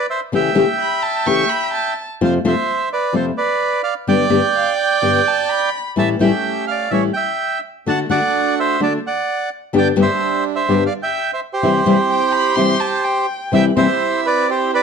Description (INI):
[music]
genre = tango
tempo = 127 BPM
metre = 4/4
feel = rubato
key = C major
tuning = A4 = 440 Hz
[part]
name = bandoneon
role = melody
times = 0.0-14.8 s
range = G4 to A5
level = -18 LUFS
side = right 3 dB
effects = plate reverb
[part]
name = nylon-string guitar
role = accompaniment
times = 0.3-13.9 s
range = F2 to G4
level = -16 LUFS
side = left 4 dB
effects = none
[part]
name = warm violin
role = second line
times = 0.8-5.9, 12.1-13.5 s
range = F5 to C#6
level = -23 LUFS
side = left 2 dB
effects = none
[part]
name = bandoneon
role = stabs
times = 6.0-14.8 s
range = G3 to G4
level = -23 LUFS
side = right 9 dB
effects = none
[sound]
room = moderate studio reverb, RT60 0.9 s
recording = dark, warm production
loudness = -15 LUFS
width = side -6 dB against mid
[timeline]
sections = 0.0-13.5 A section; 13.5-14.8 B section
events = none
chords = 0.3 A7/C#; 2.2 F; 4.1 G; 6.0 A7; 7.9 D; 9.7 G; 11.6 C